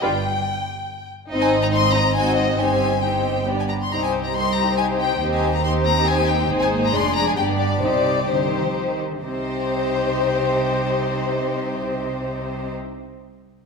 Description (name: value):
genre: quick classical-period movement for string orchestra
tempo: 127-141 BPM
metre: 3/4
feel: straight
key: C minor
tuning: A4 = 440 Hz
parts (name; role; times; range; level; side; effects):
- rich chamber violin section; melody; 0.0-12.7 s; C5 to C6; -24 LUFS; left 6 dB; none
- rich chamber violin section; second line; 0.0-12.7 s; Eb4 to Eb5; -25 LUFS; left 2 dB; none
- rich chamber viola section; accompaniment; 0.0-12.7 s; Ab3 to F4; -24 LUFS; equal; none
- rich chamber cello section; bass; 0.0-12.7 s; C2 to F3; -30 LUFS; right 2 dB; none
- warm studio double bass section; bass; 0.0-12.7 s; F1 to Eb2; -27 LUFS; right 4 dB; none
room: wet scoring stage reverb, RT60 1.7 s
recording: minimal, uncompressed stereo recording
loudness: -18 LUFS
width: side -4 dB against mid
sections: 0.0-9.2 A section; 9.2-12.0 B section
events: slowing down 5.9-9.2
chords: 0.0 G7(no3); 1.3 Ab; 2.6 Cm/G; 3.5 G; 3.9 Cm; 5.2 Cm/Eb; 6.5 Ab; 6.9 Ddim/F; 7.4 G; 7.8 Cm